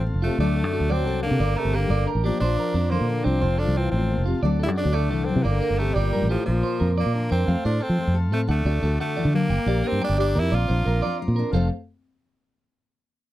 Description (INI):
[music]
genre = highlife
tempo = 118 BPM (dotted quarters)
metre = 12/8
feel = straight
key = F major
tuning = A4 = 442 Hz
[part]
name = raspy tenor saxophone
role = melody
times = 0.0-11.2 s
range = F3 to F4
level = -28 LUFS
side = right 1 dB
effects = none
[part]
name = mellow trombone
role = second line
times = 0.0-7.1 s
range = A2 to G3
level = -30 LUFS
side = left 7 dB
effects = slapback echo
[part]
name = nylon-string guitar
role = accompaniment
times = 0.0-11.7 s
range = F2 to A4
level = -29 LUFS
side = left 4 dB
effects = none
[part]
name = combo organ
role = sustained chords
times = 0.0-11.7 s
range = A4 to D6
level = -40 LUFS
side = left 1 dB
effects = none
[part]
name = fingered electric bass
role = bass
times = 0.0-11.7 s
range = F1 to F3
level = -22 LUFS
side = equal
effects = none
[part]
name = clean electric guitar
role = arpeggios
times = 0.2-11.7 s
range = D4 to G5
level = -30 LUFS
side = right 7 dB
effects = warbly pitch drift, slapback echo
[sound]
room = little or no reverb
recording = dry, close 1970s-style studio recording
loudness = -20 LUFS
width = side -14 dB against mid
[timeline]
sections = 0.0-7.5 A section; 7.5-11.5 B section; 11.5-13.3 C section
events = none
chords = 0.4 D; 1.4 Gm; 2.4 Bbadd9; 3.4 F; 4.4 D; 5.4 Gm; 6.5 Bbadd9; 7.5 F; 8.5 D; 9.5 Gm; 10.5 Bbadd9; 11.5 F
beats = 0.39 0.89 | 1.40 1.91 2.41 2.92 | 3.42 3.93 4.44 4.94 | 5.45 5.96 6.46 6.97 | 7.47 7.98 8.49 8.99 | 9.50 10.01 10.52 11.02 | 11.53